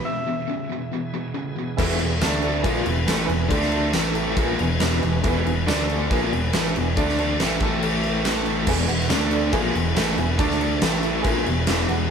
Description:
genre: classic rock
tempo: 140 BPM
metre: 4/4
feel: straight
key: E mixolydian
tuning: A4 = 442 Hz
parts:
  - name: clean lap steel guitar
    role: melody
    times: 0.0-1.3 s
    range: E5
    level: -30 LUFS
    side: left 3 dB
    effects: none
  - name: bright tonewheel organ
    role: sustained chords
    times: 0.0-12.1 s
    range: G#3 to E5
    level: -34 LUFS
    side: right 1 dB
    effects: none
  - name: overdriven electric guitar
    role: riff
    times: 0.0-12.1 s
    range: E2 to D4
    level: -27 LUFS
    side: left 6 dB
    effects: tremolo
  - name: tight distorted guitar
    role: riff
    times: 0.0-12.1 s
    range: E2 to D4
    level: -28 LUFS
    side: right 7 dB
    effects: distortion
  - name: reed electric piano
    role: accompaniment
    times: 1.8-12.1 s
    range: D4 to B5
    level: -30 LUFS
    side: right 5 dB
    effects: fast tremolo
  - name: growling picked electric bass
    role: bass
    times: 1.8-12.1 s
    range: E1 to D2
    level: -26 LUFS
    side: equal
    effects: overdrive
  - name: big rock drum kit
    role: drums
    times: 1.8-12.0 s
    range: crash cymbal, kick drum, snare drum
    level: -24 LUFS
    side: equal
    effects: none
  - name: cowbell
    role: percussion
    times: 1.8-11.8 s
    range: none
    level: -36 LUFS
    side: left 5 dB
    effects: none
room: moderate stone room reverb, RT60 1.4 s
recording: band playing live in one room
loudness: -20 LUFS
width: side -7 dB against mid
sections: 0.0-1.8 A section; 1.8-8.7 B section; 8.7-12.1 B section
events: break 0.1-1.8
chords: 0.0 E; 2.2 D5; 2.7 E; 3.5 D5; 4.0 A5; 4.4 E; 5.7 D5; 6.1 E; 7.0 D5; 7.4 E; 7.6 A5; 8.7 E; 9.1 D5; 9.5 E; 10.4 D5; 10.8 A5; 11.2 E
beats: | 0.07 0.51 0.94 1.37 | 1.80 2.23 2.66 3.09 | 3.52 3.95 4.38 4.81 | 5.24 5.67 6.10 6.53 | 6.96 7.39 7.82 8.25 | 8.68 9.11 9.54 9.96 | 10.39 10.82 11.25 11.68

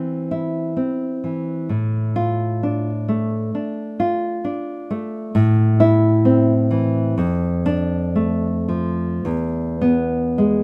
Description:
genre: romantic piece for solo classical guitar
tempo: 52-67 BPM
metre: 4/4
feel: rubato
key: A minor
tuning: A4 = 438 Hz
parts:
  - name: nylon-string guitar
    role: solo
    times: 0.0-10.6 s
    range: E2 to F4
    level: -20 LUFS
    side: equal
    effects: none
room: light reverb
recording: none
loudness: -20 LUFS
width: mono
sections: 0.0-10.6 A section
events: none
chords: 0.0 Am (rootless); 1.7 Dm/A; 5.3 Am; 7.2 Dm/F; 9.2 E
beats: 0.77 | 1.69 2.62 3.53 4.43 | 5.34 6.25 7.17 8.15 | 9.24 10.39

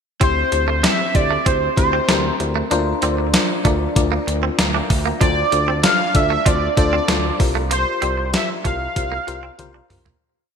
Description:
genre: 1980s-style pop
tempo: 96 BPM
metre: 4/4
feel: straight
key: unclear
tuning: A4 = 440 Hz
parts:
  - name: octave-doubled lead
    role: melody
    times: 0.2-9.9 s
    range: C5 to F5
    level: -21 LUFS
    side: right 1 dB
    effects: chorus, phaser, ping-pong delay
  - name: FM electric piano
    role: accompaniment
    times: 0.2-10.2 s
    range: C4 to Bb5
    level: -23 LUFS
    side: left 5 dB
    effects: chorus
  - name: direct-recorded clean electric guitar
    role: riff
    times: 0.2-10.2 s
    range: G3 to D4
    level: -27 LUFS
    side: right 10 dB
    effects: lush chorus, ping-pong delay
  - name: smooth synth bass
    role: bass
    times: 0.2-10.1 s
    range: C2 to D2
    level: -24 LUFS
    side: equal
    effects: none
  - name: clean 12-bit digital drum machine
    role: drums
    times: 0.2-10.2 s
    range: hi-hat, kick drum, snare drum, toms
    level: -19 LUFS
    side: equal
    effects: gated reverb
room: moderate plate reverb, RT60 3.4 s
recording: bright 1980s-style digital production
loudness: -16 LUFS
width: side -6 dB against mid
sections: 0.2-10.2 verse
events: FM electric piano fill 4.3-5.2; fade-out 7.7-10.2; drum fill 9.6-10.2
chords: 0.2 C/D; 2.7 Bbadd9/D; 5.2 Dm7; 7.4 C7sus4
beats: | 0.21 0.84 1.46 2.09 | 2.71 3.34 3.96 4.59 | 5.21 5.84 6.46 7.09 | 7.71 8.34 8.96 9.59

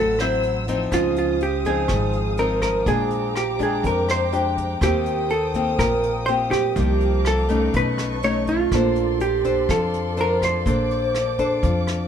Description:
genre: bossa nova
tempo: 123 BPM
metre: 4/4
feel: straight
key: Bb major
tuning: A4 = 440 Hz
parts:
  - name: vintage hollow-body jazz guitar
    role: melody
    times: 0.0-12.1 s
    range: F4 to C#5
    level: -23 LUFS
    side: right 2 dB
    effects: none
  - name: breathy mellow wooden-headed alto flute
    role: second line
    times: 0.0-12.1 s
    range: F4 to C#5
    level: -30 LUFS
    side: equal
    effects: none
  - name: nylon-string guitar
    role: accompaniment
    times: 0.0-12.1 s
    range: F2 to C5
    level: -24 LUFS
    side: left 4 dB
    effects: none
  - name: warm studio violin section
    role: sustained chords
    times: 0.0-12.1 s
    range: Bb3 to E6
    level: -32 LUFS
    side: equal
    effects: none
  - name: upright bass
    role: bass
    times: 0.0-12.1 s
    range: Ab1 to F2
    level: -26 LUFS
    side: equal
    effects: none
  - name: vintage brush drum kit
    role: drums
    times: 0.2-12.0 s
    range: hi-hat, kick drum, rim click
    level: -29 LUFS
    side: equal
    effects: none
room: light reverb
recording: minimal, uncompressed stereo recording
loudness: -19 LUFS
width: side -8 dB against mid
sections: 0.0-12.1 A section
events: none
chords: 0.0 D9 (rootless); 0.9 Dbmaj9; 2.9 Bb13; 4.8 Eb6; 6.8 Cm11; 7.7 B9; 8.7 Bbmaj9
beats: 0.43 | 0.91 1.40 1.89 2.38 | 2.86 3.35 3.84 4.32 | 4.81 5.30 5.79 6.27 | 6.76 7.25 7.73 8.22 | 8.71 9.20 9.68 10.17 | 10.66 11.14 11.63

